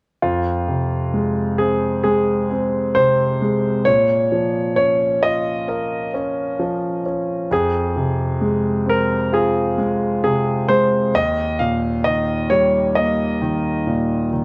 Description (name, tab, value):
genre	pop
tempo	66 BPM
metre	4/4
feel	straight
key	F minor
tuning	A4 = 440 Hz
part	clear concert grand piano	melody	0.2-14.3 s	F4 to F5	-22 LUFS	equal	none
part	clear concert grand piano	accompaniment	0.2-14.4 s	Eb2 to Bb4	-22 LUFS	equal	none
room	light reverb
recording	worn, warbling old tape, cassette tape, warbly pitch drift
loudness	-19 LUFS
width	mono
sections	0.2-14.4 A section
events	none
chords	0.2 Fm; 3.9 Bbm; 7.5 Fm; 11.1 Eb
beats	| 0.24 1.15 2.06 2.96 | 3.87 4.78 5.69 6.60 | 7.51 8.42 9.33 10.24 | 11.15 12.06 12.96 13.87